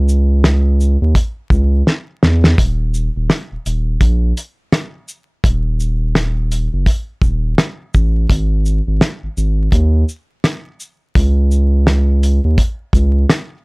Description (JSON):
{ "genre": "hip hop, boom-bap hip-hop", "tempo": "84 BPM", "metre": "4/4", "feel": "swing 60% on 16ths", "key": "unclear", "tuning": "A4 = 440 Hz", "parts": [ { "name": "saturated sub bass", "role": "bass", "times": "0.0-13.3 s", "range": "Eb1 to Fb2", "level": "-14 LUFS", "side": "equal", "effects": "transformer saturation" }, { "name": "cloth-damped thuddy drum kit", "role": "drums", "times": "0.1-13.5 s", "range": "hi-hat, kick drum, rim click, shaker, snare drum", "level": "-14 LUFS", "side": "equal", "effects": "none" } ], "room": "little or no reverb", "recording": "dry, gritty hardware recording, transformer saturation, vinyl crackle", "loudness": "-13 LUFS", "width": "side -34 dB against mid", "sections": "0.0-13.6 A section", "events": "drum fill 1.9-2.6", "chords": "none" }